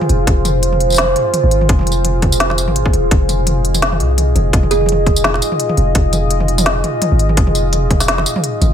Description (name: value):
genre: half-time drum and bass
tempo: 169 BPM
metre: 4/4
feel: swing 56% on 16ths, half-time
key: F minor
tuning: A4 = 440 Hz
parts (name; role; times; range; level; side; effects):
- deep dark ambient pad; sustained chords; 0.0-8.7 s; F4 to Eb5; -18 LUFS; equal; chorus, built-in reverb, sidechain pumping
- organic electronic drum kit; drums; 0.0-8.7 s; hi-hat, snare drum, tambourine, toms; -18 LUFS; equal; small room reverb
- long sustained 808-style bass; bass; 0.1-8.7 s; Eb1 to C2; -16 LUFS; equal; none
- electronic kick drum; drums; 0.3-8.0 s; none; -14 LUFS; equal; small room reverb
- kalimba; melody; 4.7-5.0 s; Ab4; -21 LUFS; right 6 dB; vintage 12-bit sampler grit, ping-pong delay
room: light reverb, digital ambience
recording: none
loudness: -12 LUFS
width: side -9 dB against mid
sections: 0.0-8.7 A section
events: kick drops out 8.4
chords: 0.0 Fm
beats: | 0.27 0.63 0.98 1.34 | 1.69 2.05 2.40 2.76 | 3.11 3.47 3.82 4.18 | 4.53 4.89 5.24 5.60 | 5.95 6.31 6.66 7.02 | 7.37 7.73 8.08 8.44